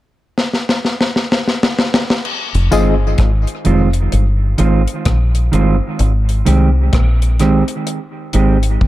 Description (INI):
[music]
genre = dub reggae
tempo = 64 BPM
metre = 4/4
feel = swing 62% on 16ths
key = F minor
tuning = A4 = 441 Hz
[part]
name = deep reggae drum kit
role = drums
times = 0.4-8.9 s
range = crash cymbal, hi-hat, kick drum, rim click, snare drum, toms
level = -16 LUFS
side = left 1 dB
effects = none
[part]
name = deep dub fingered electric bass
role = bass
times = 2.5-8.8 s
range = F1 to C2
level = -13 LUFS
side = equal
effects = none
[part]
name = mellow electric guitar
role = accompaniment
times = 2.7-8.6 s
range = Eb3 to G4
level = -17 LUFS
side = right 3 dB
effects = high-pass filter, tape echo
[part]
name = reed electric piano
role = stabs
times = 2.7-2.9 s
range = F4 to Eb5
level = -19 LUFS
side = left 7 dB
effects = fast tremolo, high-pass filter, tape echo
[part]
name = tambourine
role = percussion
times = 2.7-3.0 s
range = none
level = -32 LUFS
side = equal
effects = tape echo
[sound]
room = light reverb, studio reverb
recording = echo-heavy mix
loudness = -12 LUFS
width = side -15 dB against mid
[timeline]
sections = 0.0-2.2 A section; 2.2-8.9 B section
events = drum fill 0.4-2.2; part muted 2.2-8.9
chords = 0.0 N.C.; 2.2 Fm7; 6.0 Abmaj7